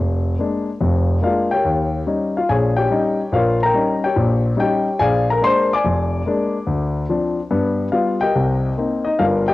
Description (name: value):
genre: solo jazz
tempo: 143 BPM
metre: 4/4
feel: swing 67% on 8ths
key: Bb mixolydian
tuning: A4 = 440 Hz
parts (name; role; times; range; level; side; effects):
- warm concert grand piano; solo; 0.0-9.5 s; F1 to D6; -16 LUFS; left 2 dB; cassette tape
room: moderate spring reverb, RT60 2.0 s, small room ambience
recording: home recording on cassette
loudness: -16 LUFS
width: side -17 dB against mid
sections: 0.0-9.5 A section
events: none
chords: 0.0 Bb7; 1.6 Eb7; 5.0 Bb7; 6.7 Dm7b5; 7.5 G7; 8.3 Cm7